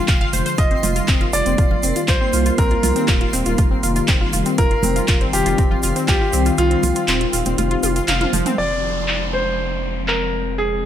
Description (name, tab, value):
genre	progressive house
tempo	120 BPM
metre	4/4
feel	straight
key	unclear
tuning	A4 = 440 Hz
part	clear concert grand piano	melody	0.0-10.9 s	F4 to G5	-23 LUFS	equal	ping-pong delay
part	lush unison pad	sustained chords	0.0-10.9 s	D3 to C4	-24 LUFS	left 1 dB	chorus, phaser, sidechain pumping
part	twinkling granular texture	texture	0.0-8.6 s	C6	-34 LUFS	right 2 dB	built-in reverb, sidechain pumping
part	analog pluck	arpeggios	0.1-8.5 s	F3 to F5	-24 LUFS	equal	chorus, sidechain pumping, digital delay
part	round analog bass	bass	0.1-10.9 s	Eb1 to C2	-23 LUFS	equal	sidechain pumping
part	electronic kick drum	drums	0.1-6.2 s	none	-18 LUFS	equal	none
part	house drum kit	drums	0.1-10.2 s	handclaps, hi-hat, toms	-23 LUFS	right 1 dB	low-pass filter on hats, low-pass filter on snare, low-pass filter on toms
part	tube shaker	percussion	0.1-8.6 s	none	-30 LUFS	left 2 dB	none
part	congas	percussion	0.3-8.4 s	none	-27 LUFS	right 4 dB	sidechain pumping on perc
part	downlifter	sound effects	8.6-10.9 s	none	-28 LUFS	right 1 dB	none
room	little or no reverb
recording	none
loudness	-16 LUFS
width	side -10 dB against mid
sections	0.0-8.6 A section; 8.6-10.9 B section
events	filter sweep on analog synth pad 0.0-8.6; kick drops out 6.6-8.6; drum fill 7.8-8.6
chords	0.0 Fm; 0.6 Eb; 8.6 Fm